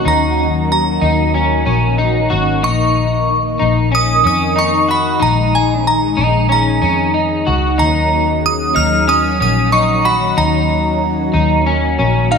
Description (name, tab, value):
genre	dream pop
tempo	93 BPM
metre	4/4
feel	straight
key	Eb minor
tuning	A4 = 440 Hz
part	glassy synth bell	melody	0.0-12.4 s	F5 to F6	-17 LUFS	right 3 dB	chorus, phaser, tape echo
part	ensemble organ-string	sustained chords	0.0-12.4 s	Eb3 to Gb4	-19 LUFS	equal	phaser, ensemble chorus
part	electric guitar at the edge of break-up	arpeggios	0.0-12.4 s	Db4 to Gb4	-18 LUFS	left 3 dB	analog chorus, tape echo
part	vintage muted fingered electric bass	bass	0.1-12.4 s	Ab1 to F2	-18 LUFS	left 2 dB	none
part	vibraphone with soft mallets	texture	8.4-12.4 s	Ab4 to Db5	-30 LUFS	left 1 dB	none
room	moderate plate reverb, RT60 2.9 s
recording	studio reverb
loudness	-12 LUFS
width	side -6 dB against mid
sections	0.0-12.4 A section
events	none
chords	0.0 Ebm7; 2.6 Bbsus4; 7.8 Ebm7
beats	| 0.05 0.70 1.34 1.99 | 2.63 3.28 3.92 4.57 | 5.21 5.86 6.50 7.15 | 7.79 8.44 9.08 9.73 | 10.37 11.02 11.66 12.31